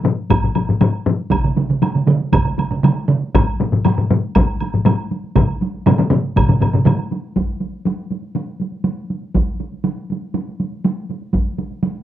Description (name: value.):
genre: japanese traditional, taiko drum ensemble.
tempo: 120 BPM.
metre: 4/4.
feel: straight.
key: none.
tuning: none.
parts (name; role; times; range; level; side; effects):
taiko ensemble; percussion; 0.0-12.0 s; none; -21 LUFS; right 2 dB; none.
taiko ensemble; percussion; 0.1-7.0 s; none; -16 LUFS; left 3 dB; none.
taiko ensemble; percussion; 0.3-11.5 s; none; -20 LUFS; equal; none.
woodblock; percussion; 0.3-7.0 s; none; -26 LUFS; right 4 dB; none.
taiko ensemble; percussion; 1.3-7.0 s; none; -17 LUFS; right 4 dB; none.
room: light reverb.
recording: dry, close 1970s-style studio recording.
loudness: -16 LUFS.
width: side -12 dB against mid.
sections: 0.0-7.4 A section; 7.4-12.0 B section.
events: speeding up 0.0-12.0.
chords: none.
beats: 0.31 0.82 | 1.33 1.83 2.34 2.85 | 3.35 3.85 4.36 4.86 | 5.36 5.87 6.37 6.87 | 7.37 7.86 8.36 8.86 | 9.36 9.85 10.35 10.84 | 11.34 11.83.